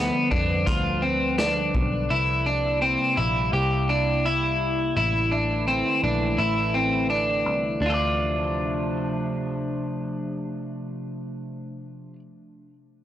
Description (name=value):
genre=dream pop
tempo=84 BPM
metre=4/4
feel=straight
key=D minor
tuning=A4 = 441 Hz
part: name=warbly tape-like pad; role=sustained chords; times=0.0-11.4 s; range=C3 to B4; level=-29 LUFS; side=right 1 dB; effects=chorus, built-in reverb
part: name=electric guitar at the edge of break-up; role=arpeggios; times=0.0-12.2 s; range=B3 to D5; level=-24 LUFS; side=left 1 dB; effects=lush chorus, analog delay
part: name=vintage muted picked electric bass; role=bass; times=0.0-12.1 s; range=A1 to F2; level=-28 LUFS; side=equal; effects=transformer saturation
part: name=raw garage drum kit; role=drums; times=0.3-1.9 s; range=hi-hat, kick drum, snare drum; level=-27 LUFS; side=equal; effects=none
room=light reverb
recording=transformer saturation, cassette tape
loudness=-22 LUFS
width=side -12 dB against mid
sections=0.0-7.8 A section; 7.8-10.7 B section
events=none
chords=0.0 G7/D; 2.1 C7; 5.0 Asus4; 7.8 Dm7